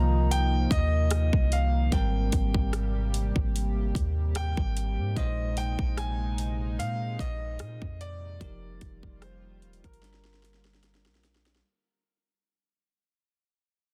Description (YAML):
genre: contemporary R&B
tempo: 74 BPM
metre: 4/4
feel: swing 54% on 16ths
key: unclear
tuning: A4 = 441 Hz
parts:
  - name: clear concert grand piano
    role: melody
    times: 0.0-11.2 s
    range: Bb4 to Bb5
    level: -38 LUFS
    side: equal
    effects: delay
  - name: bell-like tine electric piano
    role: accompaniment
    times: 0.0-11.7 s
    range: Ab2 to Eb5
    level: -39 LUFS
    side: equal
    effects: none
  - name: chorused pulse-width pad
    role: sustained chords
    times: 0.0-11.6 s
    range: C3 to G4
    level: -39 LUFS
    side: equal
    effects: sidechain pumping
  - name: warm 808-style bass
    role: bass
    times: 0.0-11.6 s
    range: Eb1 to Bb2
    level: -30 LUFS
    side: equal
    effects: none
  - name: trap drum kit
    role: drums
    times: 0.3-11.7 s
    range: hi-hat, kick drum, rim click, snare drum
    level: -32 LUFS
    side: equal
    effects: none
room: digital ambience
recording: dense, heavily limited modern master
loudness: -28 LUFS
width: mono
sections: 0.0-11.7 A section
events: fade-out 0.0-11.7; drum fill 10.0-11.7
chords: 0.0 Cm7; 1.9 Abmaj9; 5.2 Bb9sus4; 8.4 F9sus4; 10.0 Gm7